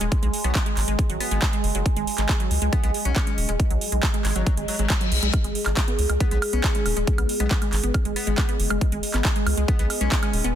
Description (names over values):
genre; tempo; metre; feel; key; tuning
psychedelic trance; 138 BPM; 4/4; straight; G# minor; A4 = 441 Hz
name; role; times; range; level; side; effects
overtone-sweeping drone; sustained chords; 0.0-10.6 s; G#3; -30 LUFS; equal; chorus, built-in reverb, sidechain pumping
wide unison pluck; riff; 0.0-10.5 s; F#3 to B3; -30 LUFS; moving between left 3 dB and right 4 dB; auto-pan, vintage 12-bit sampler grit, sidechain pumping, tape echo
round analog bass; bass; 0.0-10.5 s; D#1 to C#2; -24 LUFS; equal; none
big-room dance drum kit; drums; 0.0-10.5 s; handclaps, hi-hat, woodblock; -28 LUFS; right 2 dB; none
electronic kick drum; drums; 0.1-10.2 s; none; -23 LUFS; equal; none
metallic wobble bass; second line; 0.4-10.4 s; F#3 to C#4; -36 LUFS; left 5 dB; chorus, sidechain pumping, high-pass filter, tape echo
reverse cymbal; sound effects; 4.7-5.3 s; none; -30 LUFS; left 6 dB; none
room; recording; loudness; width
little or no reverb; dense, heavily limited modern master; -20 LUFS; side -10 dB against mid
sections
0.0-10.6 A section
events
reverse cymbal 4.7-5.3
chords
0.0 G#5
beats
| 0.12 0.55 0.99 1.42 | 1.86 2.29 2.73 3.16 | 3.60 4.03 4.46 4.90 | 5.33 5.77 6.21 6.64 | 7.07 7.51 7.94 8.38 | 8.81 9.25 9.68 10.12